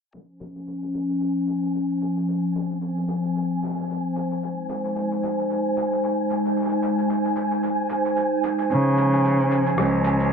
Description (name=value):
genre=folktronica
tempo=112 BPM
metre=4/4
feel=swing 56% on 16ths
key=Db major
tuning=A4 = 440 Hz
part: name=warbly tape-like pad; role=sustained chords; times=0.5-10.3 s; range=F3 to C5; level=-23 LUFS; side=equal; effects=chorus, built-in reverb
part: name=electronic cabasa and rim click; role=drums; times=0.1-10.3 s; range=none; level=-36 LUFS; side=equal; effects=none
part: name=flickering grainy texture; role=texture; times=1.2-10.3 s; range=Ab5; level=-30 LUFS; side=equal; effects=built-in reverb
part: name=bright cello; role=bass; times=8.7-10.3 s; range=Db2 to Db3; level=-19 LUFS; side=right 1 dB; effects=none
room=moderate echo chamber reverb, RT60 1.8 s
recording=low-pass filter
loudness=-21 LUFS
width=side -6 dB against mid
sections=0.1-10.3 A section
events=filter sweep 0.1-10.3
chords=0.1 Dbmaj7; 4.4 Ab; 8.7 Dbmaj7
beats=| 0.14 0.67 1.21 1.75 | 2.28 2.82 3.35 3.89 | 4.42 4.96 5.50 6.03 | 6.57 7.10 7.64 8.17 | 8.71 9.24 9.78 10.32